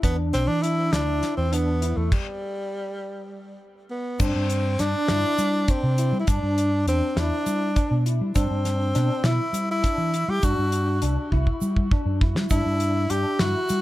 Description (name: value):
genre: progressive instrumental, band music in an uneven meter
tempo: 202 BPM (eighths)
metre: 7/8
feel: straight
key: unclear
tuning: A4 = 440 Hz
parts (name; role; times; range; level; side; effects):
- warm tenor saxophone; melody; 0.0-13.8 s; G3 to G4; -26 LUFS; equal; tape echo
- tine electric piano; arpeggios; 0.0-13.8 s; D4 to E4; -30 LUFS; left 1 dB; ensemble chorus
- fingered electric bass; bass; 0.0-13.8 s; B1 to G3; -24 LUFS; equal; none
- damped 70s drum kit; drums; 0.0-13.8 s; crash cymbal, hi-hat, kick drum, snare drum; -25 LUFS; equal; none
- egg shaker; percussion; 4.2-13.8 s; none; -40 LUFS; right 7 dB; none
room: light reverb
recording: none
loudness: -21 LUFS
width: side -16 dB against mid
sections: 0.0-4.2 A section; 4.2-13.8 B section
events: stop 2.1-4.2; drum fill 11.3-12.5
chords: 0.0 E5; 2.1 N.C.; 4.2 Cadd9/G; 6.3 G; 8.4 Cmaj7/G; 10.4 D; 12.5 Em9/G